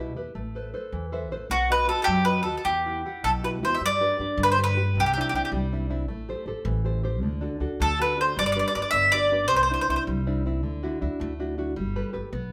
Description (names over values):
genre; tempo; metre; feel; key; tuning
italian folk, Italian serenade; 105 BPM (dotted quarters); 6/8; straight; E harmonic minor, G major from 3.8 s; A4 = 439 Hz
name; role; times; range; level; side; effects
nylon-string guitar; accompaniment; 0.0-12.5 s; B2 to F#5; -33 LUFS; equal; none
upright bass; bass; 0.0-12.5 s; G1 to G2; -32 LUFS; equal; none
bowl-back mandolin; melody; 1.5-5.5, 7.8-10.0 s; F#4 to E5; -25 LUFS; equal; none
room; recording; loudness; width
wet studio reverb, RT60 0.8 s; band playing live in one room; -25 LUFS; mono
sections
0.0-3.8 A section; 3.8-12.5 B section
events
nylon-string guitar fill 0.9-1.5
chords
0.4 Amadd9; 1.5 B; 2.6 Emadd9; 3.8 G; 5.0 Cadd9; 6.1 Am7; 7.2 D; 8.4 G; 9.5 Cadd9; 10.6 Dadd9; 11.8 Gadd9